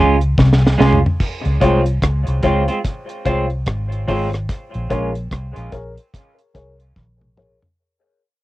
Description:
dub reggae; 73 BPM; 4/4; swing 61% on 16ths; Bb minor; A4 = 440 Hz
clean electric guitar; accompaniment; 0.0-5.1 s; Ab3 to F4; -20 LUFS; right 3 dB; low-pass filter, cassette tape, dub echo
electric guitar with an envelope filter; riff; 0.0-0.9 s; C3 to Db3; -20 LUFS; left 2 dB
fingered electric bass; bass; 0.0-7.6 s; Ab1 to Db2; -18 LUFS; equal
deep reggae drum kit; drums; 0.2-7.8 s; crash cymbal, hi-hat, kick drum, rim click, snare drum, toms; -20 LUFS; equal; cassette tape
dark upright piano; stabs; 1.6-7.6 s; F4 to Db5; -22 LUFS; left 4 dB; low-pass filter, cassette tape, dub echo
little or no reverb; home recording on cassette; -15 LUFS; side -17 dB against mid
0.0-1.2 A section; 1.2-7.8 B section
break 0.0-1.2, 4.5-7.8; drum fill 0.4-1.2, 7.0-7.8; fade-out 1.2-7.8; filter sweep 1.2-7.8
0.0 Bbm7 (rootless); 1.2 Dbmaj7; 4.5 Bbm7

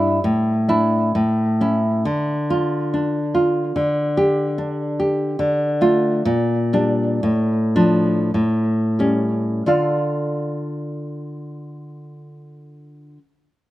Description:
romantic piece for solo classical guitar; 44-74 BPM; 2/4; rubato; D minor; A4 = 442 Hz
nylon-string guitar; solo; 0.0-13.2 s; G2 to F5; -18 LUFS; equal
light reverb; recorded outdoors, with no room sound; -17 LUFS; side -15 dB against mid
0.0-9.6 A section; 9.6-13.7 B section
slowing down 4.6-9.6
0.2 Asus4; 1.1 A; 2.1 Dm; 3.8 Dsus4; 5.4 Dm; 6.2 Gm/Bb; 7.2 Dm/A; 8.3 A7; 9.6 Dm

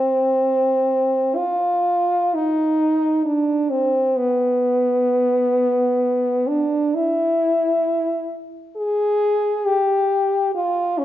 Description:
classical, free, expressive piece for unaccompanied French horn; free time; A4 = 441 Hz
clear French horn; solo; 0.0-11.0 s; B3 to Ab4; -17 LUFS; equal
wet recital hall reverb, RT60 1.3 s; dark, warm production, nothing above 7.5 kHz; -17 LUFS; side -13 dB against mid
0.0-11.0 A section

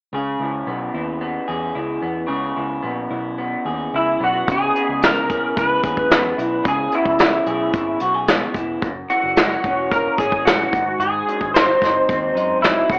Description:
indie pop, bedroom pop; 110 BPM; 4/4; straight; C# dorian; A4 = 441 Hz
electric guitar through a small old amp; accompaniment; 0.1-13.0 s; F#2 to G#4; -22 LUFS; equal; lush chorus, warbly pitch drift, cassette tape
vintage muted picked electric bass; bass; 0.1-13.0 s; E1 to F#2; -33 LUFS; equal
electric guitar through a small old amp; melody; 4.0-13.0 s; E4 to B#4; -18 LUFS; equal; ensemble chorus
soft brush drum kit; drums; 4.5-13.0 s; hi-hat, kick drum, snare drum; -18 LUFS; equal; cassette tape
moderate spring reverb, RT60 1.2 s; home recording on cassette, AM radio sound; -17 LUFS; side -28 dB against mid
0.1-4.5 A section; 4.5-13.0 B section
0.1 C#m7; 8.8 F#7; 10.7 G#7

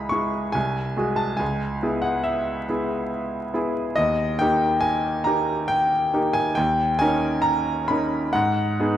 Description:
classical, romantic character piece for solo piano; 69 BPM; 3/4; rubato; A4 = 440 Hz
clear baby grand piano; solo; 0.0-9.0 s; B#1 to C#6; -20 LUFS; equal
moderate scoring stage reverb, RT60 1.6 s; vinyl crackle; -20 LUFS; side -11 dB against mid
0.0-9.0 A section
0.0 C#m; 0.6 G#7/B#; 1.4 C#m7; 4.0 D#; 6.6 D#5; 8.3 G#m

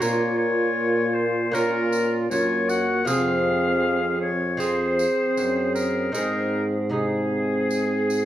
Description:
classical, renaissance-style consort dance; 78 BPM; 4/4; straight; A4 = 440 Hz
clear oboe; melody; 0.0-8.2 s; Ab4 to Gb5; -27 LUFS; left 4 dB
tenor recorder; second line; 0.0-8.2 s; F4 to Bb4; -27 LUFS; right 4 dB
lute; accompaniment; 0.0-8.2 s; F2 to Bb4; -30 LUFS; right 2 dB
mellow trombone; accompaniment; 0.0-8.2 s; Bb3 to C4; -26 LUFS; left 1 dB
clear trombone; bass; 0.0-8.2 s; F2 to Bb2; -28 LUFS; equal
tambourine; percussion; 0.0-8.2 s; -38 LUFS; right 6 dB
wet recital hall reverb, RT60 1.5 s; dark, warm production; -20 LUFS; side -12 dB against mid
0.0-8.2 A section
0.0 Bbm; 3.1 Fm; 6.2 Ab

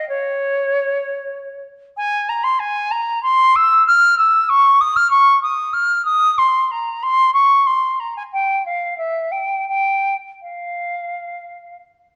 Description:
classical, baroque-style fantasia for unaccompanied flute; 83-98 BPM; 4/4; rubato; F minor; A4 = 440 Hz
silver concert flute; solo; 0.0-11.8 s; Db5 to F6; -17 LUFS; equal
moderate recital hall reverb, RT60 1.5 s; dark, warm production; -17 LUFS; mono
0.0-12.2 A section

